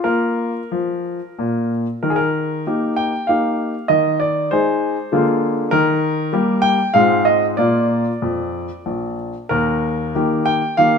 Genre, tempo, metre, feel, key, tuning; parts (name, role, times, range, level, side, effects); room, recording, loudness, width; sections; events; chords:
classical-period piano sonatina; 89-100 BPM; 3/4; rubato; Eb major; A4 = 439 Hz
clear baby grand piano; solo; 0.0-11.0 s; Bb1 to G5; -16 LUFS; left 1 dB
wet stone room reverb, RT60 1.1 s; minimal, uncompressed stereo recording; -16 LUFS; side -6 dB against mid
0.0-2.0 A section; 2.0-11.0 B section
0.0 Bb5; 2.0 Eb; 3.9 Ab/Eb; 5.1 Bb7/D; 5.7 Eb; 6.9 Fm/Ab; 7.6 Bb; 9.5 Eb